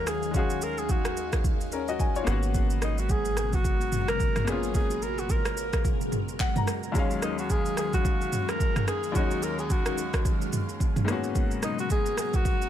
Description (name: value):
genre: amapiano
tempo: 109 BPM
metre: 4/4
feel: swing 58% on 16ths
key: Eb minor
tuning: A4 = 440 Hz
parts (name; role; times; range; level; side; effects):
- breathy alto saxophone; melody; 0.0-12.7 s; Eb4 to Bb4; -31 LUFS; equal; digital delay
- bright grand piano; accompaniment; 0.0-12.7 s; Eb2 to Bb5; -33 LUFS; left 5 dB; none
- phased string machine; sustained chords; 0.0-12.7 s; Cb3 to F5; -34 LUFS; equal; ensemble chorus, phaser
- plucky analog bass; bass; 0.0-6.6 s; Ab1 to Eb2; -33 LUFS; equal; none
- deep house drum kit; drums; 0.1-12.7 s; handclaps, kick drum, rim click, shaker, toms; -27 LUFS; right 1 dB; overdrive
room: little or no reverb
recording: none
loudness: -24 LUFS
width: side -11 dB against mid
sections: 0.0-12.7 A section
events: grand piano fill 1.7-2.5, 6.1-6.9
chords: 0.0 Ebm11; 2.3 Abm11; 6.9 Ebm11; 11.1 Abm11